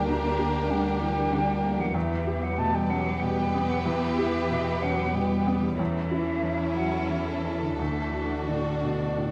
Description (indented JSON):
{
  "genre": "cinematic",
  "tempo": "86-98 BPM",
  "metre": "3/4",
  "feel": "rubato",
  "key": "unclear",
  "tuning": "A4 = 444 Hz",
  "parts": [
    { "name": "warm studio violin section", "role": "melody", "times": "0.0-9.3 s", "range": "A4 to B4", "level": "-39 LUFS", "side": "equal", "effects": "none" },
    { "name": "mellow hollow silver concert flute", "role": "second line", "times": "0.0-9.3 s", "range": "D5 to Bb5", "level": "-35 LUFS", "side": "equal", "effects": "none" },
    { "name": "rich studio violin section", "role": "second line", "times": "0.0-9.3 s", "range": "E4 to G4", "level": "-38 LUFS", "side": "equal", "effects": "none" },
    { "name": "felt-muted upright piano", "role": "accompaniment", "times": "0.0-9.3 s", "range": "D2 to G4", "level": "-34 LUFS", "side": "equal", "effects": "none" },
    { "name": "warm studio viola section", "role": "accompaniment", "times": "0.0-9.3 s", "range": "B3 to D4", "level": "-37 LUFS", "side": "equal", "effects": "none" },
    { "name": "concert harp", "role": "arpeggios", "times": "0.0-9.3 s", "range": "D3 to F#5", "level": "-37 LUFS", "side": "equal", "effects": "none" },
    { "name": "rich studio double bass section", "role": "bass", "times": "0.0-9.3 s", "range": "D2 to E2", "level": "-35 LUFS", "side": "equal", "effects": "none" },
    { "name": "warm studio cello section", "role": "bass", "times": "0.0-9.3 s", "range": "D3 to Bb3", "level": "-34 LUFS", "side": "equal", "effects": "none" }
  ],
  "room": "wet concert hall reverb, RT60 2.2 s",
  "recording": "none",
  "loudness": "-27 LUFS",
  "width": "mono",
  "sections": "0.0-9.3 A section",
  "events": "none",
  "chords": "0.0 Gm/D; 1.9 Em; 5.8 A/E; 7.8 D",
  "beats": "| 0.08 0.70 1.32 | 1.95 2.58 3.21 | 3.85 4.50 5.14 | 5.79 6.44 7.10 | 7.79 8.49 9.18"
}